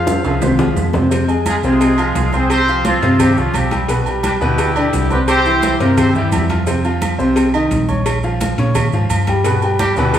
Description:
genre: latin, salsa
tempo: 173 BPM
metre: 4/4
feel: straight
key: F minor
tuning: A4 = 440 Hz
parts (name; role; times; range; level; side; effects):
- bright horn section; melody; 0.0-6.5, 9.8-10.2 s; F3 to F5; -18 LUFS; equal; none
- clear grand piano; accompaniment; 0.0-10.2 s; B2 to Db6; -17 LUFS; equal; none
- hollow-body short-scale fingered electric bass; bass; 0.0-10.2 s; Bb1 to Bb2; -19 LUFS; equal; none
- bongos and cowbell; percussion; 0.1-10.2 s; none; -26 LUFS; left 1 dB; none
- congas; percussion; 0.1-10.2 s; none; -24 LUFS; equal; none
- maracas; percussion; 0.1-10.2 s; none; -35 LUFS; right 5 dB; none
- timbales and agogo bells; percussion; 0.1-10.2 s; none; -25 LUFS; right 3 dB; none
- claves; percussion; 0.4-10.0 s; none; -35 LUFS; right 5 dB; none
room: wet large studio reverb, RT60 1.2 s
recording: band playing live in one room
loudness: -13 LUFS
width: side -10 dB against mid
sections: 0.0-1.1 A section; 1.1-10.2 B section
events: drum fill 0.1-1.1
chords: 0.0 Fm; 2.5 Csus4; 3.9 G/B; 5.3 C; 6.7 F5; 8.1 Bbm; 9.4 G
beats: 0.08 0.42 0.77 | 1.12 1.47 1.81 2.16 | 2.51 2.85 3.20 3.55 | 3.89 4.24 4.59 4.94 | 5.28 5.63 5.98 6.32 | 6.67 7.02 7.36 7.71 | 8.06 8.40 8.75 9.10 | 9.45 9.79 10.14

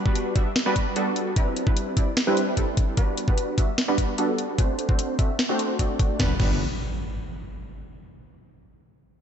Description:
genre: future bass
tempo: 149 BPM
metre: 4/4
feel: half-time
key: G major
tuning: A4 = 440 Hz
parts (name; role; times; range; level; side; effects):
- supersaw stab; riff; 0.0-6.5 s; G3 to E5; -25 LUFS; right 1 dB; lush chorus, sidechain pumping, low-pass filter, ping-pong delay
- electronic kick drum; drums; 0.1-6.5 s; none; -23 LUFS; equal; none
- trap drum kit; drums; 0.2-6.5 s; crash cymbal, hi-hat, snare drum; -29 LUFS; left 1 dB; none
- wide detuned saw bass; bass; 6.2-6.6 s; G1; -29 LUFS; left 1 dB; chorus, sidechain pumping
- impact; sound effects; 6.2-7.8 s; none; -31 LUFS; equal; none
room: moderate church reverb, RT60 2.6 s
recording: dreamy mix soaked in reverb, nothing above 8.0 kHz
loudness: -21 LUFS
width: side -8 dB against mid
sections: 0.0-6.2 A section; 6.2-7.8 B section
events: filter sweep on supersaw synth 0.0-6.2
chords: 0.0 Gmaj7; 1.4 Cmaj9; 3.0 Gmaj7; 4.6 D7; 6.2 Gmaj7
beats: 0.16 0.56 0.96 | 1.36 1.77 2.17 2.57 | 2.98 3.38 3.78 4.18 | 4.59 4.99 5.39 5.79 | 6.20 6.60 7.00 7.40

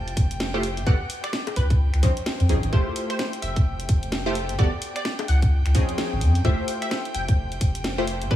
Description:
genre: UK garage, two-step garage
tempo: 129 BPM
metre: 4/4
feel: swing 60% on 16ths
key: F major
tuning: A4 = 440 Hz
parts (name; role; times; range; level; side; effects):
- airy breathy pad; sustained chords; 0.0-8.4 s; G5; -36 LUFS; left 2 dB; chorus, sidechain pumping
- punchy chord stab; stabs; 0.0-8.4 s; F3 to D5; -29 LUFS; equal; chorus, analog delay
- soft dub sub bass; bass; 0.0-8.4 s; F1 to F2; -23 LUFS; equal; tube saturation, sidechain pumping
- garage drum kit; drums; 0.1-8.3 s; bongos, finger snaps, hi-hat, snare drum; -31 LUFS; equal; small room reverb
- electronic kick drum; drums; 0.2-8.4 s; none; -20 LUFS; equal; small room reverb
- hollow square pluck; melody; 0.9-8.4 s; B4 to G5; -34 LUFS; equal; ensemble chorus, vintage 12-bit sampler grit, analog delay
room: light reverb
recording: small room ambience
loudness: -21 LUFS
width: side -12 dB against mid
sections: 0.0-8.4 A section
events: none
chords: 0.0 Fmaj9; 0.6 Gmaj7; 1.8 Dbmaj9; 2.7 Fmaj9; 4.4 Gmaj7(no3); 5.5 Dbmaj9; 6.4 Fmaj9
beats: 0.40 | 0.87 1.33 1.80 2.26 | 2.73 3.19 3.66 4.12 | 4.59 5.05 5.52 5.98 | 6.45 6.91 7.38 7.84 | 8.31

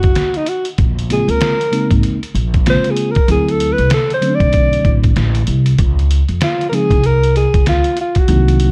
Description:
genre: hip hop, jazz-hop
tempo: 96 BPM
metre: 4/4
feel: swing 60% on 16ths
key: Db major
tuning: A4 = 441 Hz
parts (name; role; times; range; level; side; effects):
- mellow alto saxophone; melody; 0.0-8.7 s; Eb4 to D5; -19 LUFS; equal; none
- upright bass; bass; 0.0-8.7 s; Gb1 to F2; -17 LUFS; equal; none
- trip hop sampler-style drum kit; drums; 0.0-8.7 s; hi-hat, kick drum, snare drum; -19 LUFS; equal; none
- mellow tine electric piano; accompaniment; 1.1-8.7 s; C3 to F4; -20 LUFS; equal; none
room: little or no reverb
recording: dark, warm production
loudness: -14 LUFS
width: mono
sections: 0.0-5.8 A section; 5.8-8.7 B section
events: alto saxophone solo 0.0-5.8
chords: 0.0 N.C.; 0.8 Bbm9; 3.3 D9; 5.8 Dbmaj7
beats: 0.16 | 0.79 1.41 2.04 2.66 | 3.29 3.91 4.54 5.16 | 5.79 6.41 7.04 7.66 | 8.29

